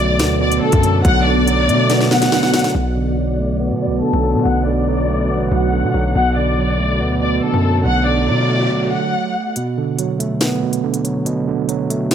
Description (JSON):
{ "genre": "hip hop, drill", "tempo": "141 BPM", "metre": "4/4", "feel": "half-time", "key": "B minor", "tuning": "A4 = 440 Hz", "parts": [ { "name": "warm studio violin section", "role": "melody", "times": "0.0-9.5 s", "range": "A4 to F#5", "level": "-20 LUFS", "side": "left 2 dB", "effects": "low-pass filter" }, { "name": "overdriven tine electric piano", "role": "accompaniment", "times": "0.0-12.1 s", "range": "B2 to B3", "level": "-18 LUFS", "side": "right 4 dB", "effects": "auto-pan, low-pass filter" }, { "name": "ethereal airy pad", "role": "sustained chords", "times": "0.0-8.7 s", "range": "B3 to D5", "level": "-25 LUFS", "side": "left 3 dB", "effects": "ensemble chorus, built-in reverb, low-pass filter" }, { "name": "distorted 808-style bass", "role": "bass", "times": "0.0-8.7 s", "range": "A1 to B2", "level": "-19 LUFS", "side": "left 1 dB", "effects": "distortion" }, { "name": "drill drum kit", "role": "drums", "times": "0.2-2.7, 9.6-12.1 s", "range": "hi-hat, kick drum, snare drum", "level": "-19 LUFS", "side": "left 1 dB", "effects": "none" }, { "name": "riser", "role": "sound effects", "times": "7.7-8.7 s", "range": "none", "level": "-30 LUFS", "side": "equal", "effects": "none" } ], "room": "light reverb", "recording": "none", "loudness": "-14 LUFS", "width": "side -8 dB against mid", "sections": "0.0-2.8 A section; 2.8-9.6 B section; 9.6-12.1 C section", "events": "drum fill 1.9-2.8; filter sweep 2.8-9.6; riser 7.7-9.6; stop 8.7-9.6; break 9.6-12.1", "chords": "0.0 Bm7", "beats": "0.20 0.62 | 1.05 1.47 1.90 2.33 | 2.75 3.18 3.60 4.03 | 4.45 4.88 5.30 5.73 | 6.16 6.58 7.01 7.43 | 7.86 8.28 8.71 9.13 | 9.56 9.98 10.41 10.84 | 11.26 11.69 12.11" }